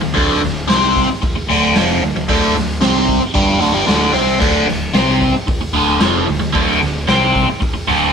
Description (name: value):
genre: garage rock duo or trio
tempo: 113 BPM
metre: 4/4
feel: straight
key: D minor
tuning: A4 = 439 Hz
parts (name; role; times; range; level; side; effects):
- biting overdriven guitar; riff; 0.0-8.1 s; D2 to C4; -14 LUFS; equal; phaser
- fuzz picked electric bass; bass; 0.0-8.1 s; D1 to C2; -22 LUFS; equal; overdrive
- raw garage drum kit; drums; 0.2-8.0 s; crash cymbal, hi-hat, kick drum, snare drum; -19 LUFS; equal; none
room: moderate stone room reverb, RT60 1.1 s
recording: band playing live in one room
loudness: -12 LUFS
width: side -6 dB against mid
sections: 0.0-8.1 A section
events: none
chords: 0.0 Dm